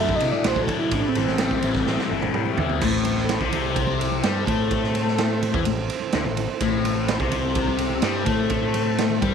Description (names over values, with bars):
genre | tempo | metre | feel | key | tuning
psychedelic rock | 126 BPM | 4/4 | straight | A dorian | A4 = 441 Hz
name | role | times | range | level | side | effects
pulse-width lead | melody | 0.0-2.5 s | C4 to E5 | -25 LUFS | right 2 dB | chorus, tape echo
overdriven combo organ | sustained chords | 0.0-9.3 s | C4 to C5 | -30 LUFS | right 9 dB | none
overdriven electric guitar | riff | 0.0-9.3 s | A2 to E4 | -24 LUFS | left 11 dB | phaser
growling picked electric bass | bass | 0.0-9.3 s | G1 to C3 | -27 LUFS | right 1 dB | overdrive
raw garage drum kit | drums | 0.1-9.3 s | crash cymbal, kick drum, ride cymbal, snare drum, toms | -26 LUFS | right 5 dB | none
congas | percussion | 0.3-9.3 s | none | -34 LUFS | right 10 dB | none
room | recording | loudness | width
light reverb, small room ambience | 1960s-style stereo with parts hard left and right | -20 LUFS | side -7 dB against mid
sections
0.0-2.8 A section; 2.8-9.3 B section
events
analog synth lead solo 0.0-2.8; drum fill 1.9-2.8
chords
0.0 Dadd9; 0.9 Am7; 2.8 Am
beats
0.44 | 0.92 1.39 1.87 2.34 | 2.82 3.29 3.77 4.24 | 4.72 5.19 5.67 6.14 | 6.62 7.09 7.57 8.04 | 8.52 9.00